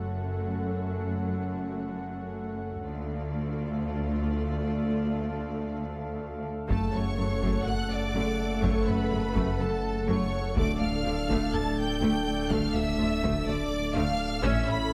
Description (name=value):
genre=cinematic, hybrid orchestral and electronic film score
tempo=124 BPM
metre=4/4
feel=straight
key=unclear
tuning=A4 = 440 Hz
part: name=rich symphonic violin section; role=melody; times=0.0-14.9 s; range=C#5 to B6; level=-41 LUFS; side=equal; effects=none
part: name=rich chamber viola section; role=accompaniment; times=0.0-14.9 s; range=F3 to A4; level=-39 LUFS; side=equal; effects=none
part: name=warm analog pad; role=sustained chords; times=0.0-14.9 s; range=C#3 to F#5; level=-38 LUFS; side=equal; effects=chorus
part: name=rich symphonic cello section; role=bass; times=0.0-14.8 s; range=D2 to A2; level=-36 LUFS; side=equal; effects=none
part: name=warm symphonic double bass section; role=bass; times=0.0-14.8 s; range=F#1 to D2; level=-37 LUFS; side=equal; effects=none
part: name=warm symphonic violin section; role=second line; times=6.7-14.9 s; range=A4 to B5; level=-37 LUFS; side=equal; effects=none
part: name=dark French horn section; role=sustained chords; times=6.7-14.9 s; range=C#3 to D4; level=-35 LUFS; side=equal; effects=none
part: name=dark detuned saw bass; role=bass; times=6.7-14.9 s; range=D1 to A1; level=-36 LUFS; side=equal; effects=none
part: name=taiko ensemble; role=drums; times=6.7-14.9 s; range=none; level=-36 LUFS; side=equal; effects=none
room=moderate scoring stage reverb, RT60 1.8 s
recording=none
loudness=-29 LUFS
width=mono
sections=0.0-6.7 A section; 6.7-14.9 B section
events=none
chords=0.0 F#m; 2.8 Dm; 6.7 F#m; 10.6 Dm